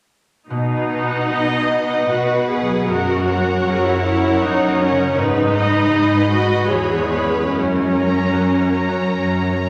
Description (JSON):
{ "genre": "classical, slow romantic movement for symphony orchestra", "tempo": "77 BPM", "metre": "3/4", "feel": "uneven beats, rubato", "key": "B major", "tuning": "A4 = 438 Hz", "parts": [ { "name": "rich studio viola section", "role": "accompaniment", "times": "0.5-9.5 s", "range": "C#4 to G#4", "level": "-22 LUFS", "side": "equal", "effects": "none" }, { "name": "concert harp", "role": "arpeggios", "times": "0.5-9.7 s", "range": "E2 to D#5", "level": "-25 LUFS", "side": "equal", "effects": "none" }, { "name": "rich studio cello section", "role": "bass", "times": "0.5-9.7 s", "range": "E2 to B2", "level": "-25 LUFS", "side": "equal", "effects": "none" }, { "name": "rich chamber violin section", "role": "second line", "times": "0.9-9.7 s", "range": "A#4 to B5", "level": "-28 LUFS", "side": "equal", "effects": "none" }, { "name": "clear chamber violin section", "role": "melody", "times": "1.3-9.6 s", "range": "A#4 to D#5", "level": "-26 LUFS", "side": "equal", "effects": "none" } ], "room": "wet concert hall reverb, RT60 1.9 s", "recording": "none", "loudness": "-18 LUFS", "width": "mono", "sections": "0.5-9.7 A section", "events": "none", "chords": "0.5 B; 2.9 F#; 5.2 G#m; 6.7 C#m7/E; 7.5 F#" }